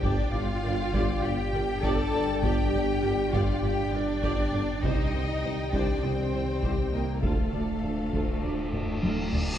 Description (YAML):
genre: cinematic, hybrid orchestral and electronic film score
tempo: 100 BPM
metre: 4/4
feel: straight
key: unclear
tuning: A4 = 442 Hz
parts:
  - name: warm symphonic violin section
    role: melody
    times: 0.0-9.4 s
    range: F5 to G5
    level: -41 LUFS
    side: left 4 dB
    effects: none
  - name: warm symphonic violin section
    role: second line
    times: 0.0-9.3 s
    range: A4 to A5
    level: -36 LUFS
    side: left 3 dB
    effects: none
  - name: warm symphonic viola section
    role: accompaniment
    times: 0.0-9.4 s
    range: F4 to Eb5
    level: -37 LUFS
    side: equal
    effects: none
  - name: mellow French horn section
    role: sustained chords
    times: 0.0-9.3 s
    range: Eb3 to D4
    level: -34 LUFS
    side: left 3 dB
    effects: none
  - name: rich symphonic cello section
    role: bass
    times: 0.0-9.3 s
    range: A3 to A4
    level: -32 LUFS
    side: right 2 dB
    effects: none
  - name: rich symphonic double bass section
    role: bass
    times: 0.0-9.4 s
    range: G1 to D2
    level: -33 LUFS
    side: right 2 dB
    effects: none
  - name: sub bass with octave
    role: bass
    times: 0.0-9.6 s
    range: D1 to C2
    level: -34 LUFS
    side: equal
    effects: none
  - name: warm tuba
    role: bass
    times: 0.0-9.4 s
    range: G1 to D2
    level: -35 LUFS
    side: right 2 dB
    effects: none
  - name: solo taiko drums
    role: drums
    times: 0.0-9.6 s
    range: none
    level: -32 LUFS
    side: equal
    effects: none
  - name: reverse cymbal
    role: sound effects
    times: 8.2-9.6 s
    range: none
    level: -36 LUFS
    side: left 1 dB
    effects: none
room: wet concert hall reverb, RT60 2.1 s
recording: heard from further back in the room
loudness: -25 LUFS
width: side -10 dB against mid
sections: 0.0-9.6 A section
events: reverse cymbal 8.2-9.6; drum fill 8.7-9.6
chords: 0.0 G5; 4.8 Cm; 7.2 Dm